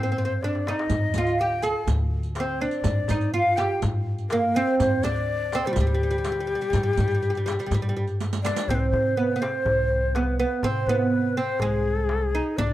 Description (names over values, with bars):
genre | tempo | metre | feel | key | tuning
Arabic maqam ensemble | 123 BPM | 4/4 | straight | G maqam bayati, C maqam nahawand from 8.7 s | A4 = 440 Hz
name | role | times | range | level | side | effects
oud | melody | 0.0-12.7 s | G3 to Ab4+50c | -25 LUFS | right 3 dB | none
breathy bright ney | second line | 0.0-12.7 s | F4 to A5-48c | -29 LUFS | left 5 dB | none
upright bass | bass | 0.0-12.7 s | C2 to C3 | -28 LUFS | equal | none
darbuka | percussion | 0.4-12.7 s | none | -29 LUFS | left 1 dB | none
riq | percussion | 0.9-8.7 s | none | -35 LUFS | right 8 dB | none
room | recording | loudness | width
studio ambience | dry, close 1970s-style studio recording | -22 LUFS | side -14 dB against mid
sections
0.0-8.7 A section; 8.7-12.7 B section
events
drum fill 0.4-0.9, 8.2-8.7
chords
none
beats
0.42 | 0.91 1.40 1.88 2.37 | 2.86 3.34 3.83 4.32 | 4.80 5.29 5.78 6.26 | 6.75 7.23 7.72 8.21 | 8.69 9.18 9.66 10.15 | 10.64 11.12 11.61 12.10 | 12.59